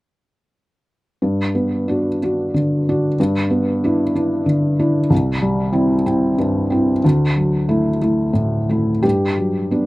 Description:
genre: neoclassical minimalist piano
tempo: 62 BPM (dotted quarters)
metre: 6/8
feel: rubato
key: G major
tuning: A4 = 440 Hz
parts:
  - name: felt-muted upright piano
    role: solo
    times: 1.2-9.9 s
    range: C2 to G4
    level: -15 LUFS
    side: equal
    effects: none
room: little or no reverb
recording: recorded outdoors, with no room sound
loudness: -16 LUFS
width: side -19 dB against mid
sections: 1.2-9.0 A section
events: none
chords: 1.2 Gmaj7; 3.2 Em7/G; 5.1 C; 7.0 Dadd9; 9.0 Gmaj7

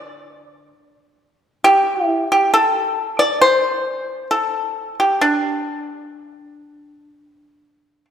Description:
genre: chinese traditional, Chinese solo plucked strings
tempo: 67 BPM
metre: 4/4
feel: rubato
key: unclear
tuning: A4 = 440 Hz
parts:
  - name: pipa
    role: solo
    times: 0.0-8.0 s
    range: D3 to D5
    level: -15 LUFS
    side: equal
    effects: none
room: wet scoring stage reverb, RT60 2.0 s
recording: none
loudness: -15 LUFS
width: side -9 dB against mid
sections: 0.0-8.1 A section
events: none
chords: none

